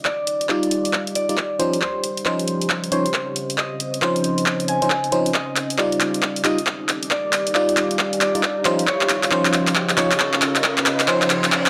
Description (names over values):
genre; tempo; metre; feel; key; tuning
UK garage, two-step garage; 136 BPM; 4/4; swing 63% on 16ths; unclear; A4 = 440 Hz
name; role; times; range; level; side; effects
concert harp; melody; 0.0-11.7 s; C5 to Ab5; -29 LUFS; equal; tape echo
electronic kick drum; drums; 0.0-11.6 s; none; -38 LUFS; equal; none
deep dark ambient pad; texture; 0.0-11.7 s; Db4 to D6; -31 LUFS; equal; chorus, built-in reverb, sidechain pumping
punchy analog drum machine; drums; 0.1-11.7 s; handclaps, hi-hat; -23 LUFS; equal; overdrive, studio reverb
FM electric piano; stabs; 0.5-11.7 s; F3 to Eb5; -25 LUFS; equal; chorus, phaser, low-pass filter, tape echo
riser and noise sweep; sound effects; 7.0-11.7 s; none; -34 LUFS; equal; none
room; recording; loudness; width
light reverb; dry, gritty hardware recording; -20 LUFS; mono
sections
0.0-11.7 A section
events
build-up 0.0-11.7; drum fill 0.0-11.7; noise sweep 10.6-11.7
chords
0.0 Ebmaj9; 1.6 Dbmaj9; 5.3 Ebmaj9; 8.7 Dbmaj9